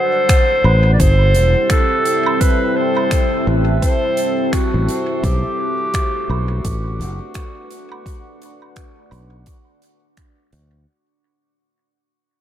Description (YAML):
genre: ambient dub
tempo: 85 BPM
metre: 4/4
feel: swing 60% on 16ths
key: unclear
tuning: A4 = 441 Hz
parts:
  - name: mellow clarinet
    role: melody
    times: 0.0-10.2 s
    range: F#4 to D5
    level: -19 LUFS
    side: equal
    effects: dub echo
  - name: deep dark ambient pad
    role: sustained chords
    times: 0.0-10.9 s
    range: G3 to F#5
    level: -23 LUFS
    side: equal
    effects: chorus, built-in reverb
  - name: electronic kick drum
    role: drums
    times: 0.3-10.3 s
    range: none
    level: -17 LUFS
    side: equal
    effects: none
  - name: gated 80s drum kit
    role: drums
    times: 0.3-10.7 s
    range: finger snaps, hi-hat, woodblock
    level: -26 LUFS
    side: right 3 dB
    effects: dub echo
  - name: fingered electric bass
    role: bass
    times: 0.6-10.8 s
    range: E1 to D2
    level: -15 LUFS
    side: equal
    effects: none
room: moderate spring reverb, RT60 2.8 s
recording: none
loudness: -14 LUFS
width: side -11 dB against mid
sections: 0.0-10.9 A section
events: fade-out 0.0-10.9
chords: 0.0 Am7; 5.2 Bm7